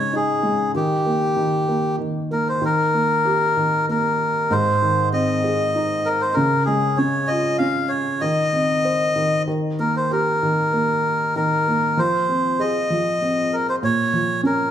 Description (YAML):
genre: children's music, lullaby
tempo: 96 BPM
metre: 3/4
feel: straight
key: unclear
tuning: A4 = 438 Hz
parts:
  - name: melodica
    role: melody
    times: 0.0-14.7 s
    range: G4 to F5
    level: -20 LUFS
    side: left 1 dB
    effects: slapback echo
  - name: felt-muted upright piano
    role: accompaniment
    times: 0.0-14.7 s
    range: Ab2 to C5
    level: -22 LUFS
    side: right 1 dB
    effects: none
room: moderate recital hall reverb, RT60 1.6 s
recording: none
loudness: -18 LUFS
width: side -10 dB against mid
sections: 0.0-2.6 A section; 2.6-14.7 B section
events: none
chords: 0.0 Dbsus2; 0.7 Eb; 4.5 Ab; 6.4 Db; 8.2 Cm/Eb; 9.5 Eb; 12.0 Fm7; 13.8 Bbm